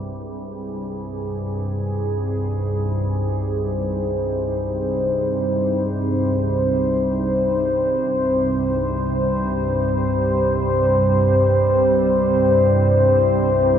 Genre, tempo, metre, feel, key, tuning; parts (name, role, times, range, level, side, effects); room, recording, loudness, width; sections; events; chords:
ambient; free time; A4 = 440 Hz
deep dark ambient pad; sustained chords; 0.0-13.8 s; G3 to C5; -19 LUFS; equal; chorus, built-in reverb
organ-like drone; drone; 0.0-13.8 s; C2 to G2; -22 LUFS; equal; ensemble chorus, built-in reverb
wet plate reverb, RT60 2.5 s; dreamy mix soaked in reverb; -17 LUFS; side -8 dB against mid
0.0-13.8 A section
fade-in on ambient pad 0.0-13.8
0.0 Ab; 9.2 C